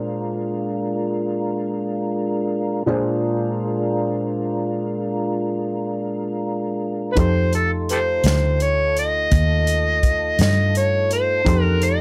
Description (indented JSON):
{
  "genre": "slow blues",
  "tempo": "56 BPM (dotted quarters)",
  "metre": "12/8",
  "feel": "straight",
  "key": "Bb mixolydian",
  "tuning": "A4 = 440 Hz",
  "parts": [
    { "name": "dark upright piano", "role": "accompaniment", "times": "0.0-12.0 s", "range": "Bb2 to C6", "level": "-29 LUFS", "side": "equal", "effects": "none" },
    { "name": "tonewheel organ", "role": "sustained chords", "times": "0.0-12.0 s", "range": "E3 to Gb5", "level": "-27 LUFS", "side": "equal", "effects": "overdrive, chorus vibrato, slow rotary speaker" },
    { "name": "overdriven harmonica", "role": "melody", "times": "7.1-12.0 s", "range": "G4 to Eb5", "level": "-22 LUFS", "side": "equal", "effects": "none" },
    { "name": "vintage muted fingered electric bass", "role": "bass", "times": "7.2-12.0 s", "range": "D2 to G2", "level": "-23 LUFS", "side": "equal", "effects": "none" },
    { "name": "natural country drum kit", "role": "drums", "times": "7.2-12.0 s", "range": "hi-hat, kick drum, snare drum", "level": "-24 LUFS", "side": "equal", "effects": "none" }
  ],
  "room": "light reverb",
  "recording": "none",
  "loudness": "-21 LUFS",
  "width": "mono",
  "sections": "0.0-12.0 A section",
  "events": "none",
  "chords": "0.0 Bb7; 7.2 F7",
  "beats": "0.73 1.80 | 2.88 3.95 5.03 6.10 | 7.17 8.25 9.32 10.39 | 11.47"
}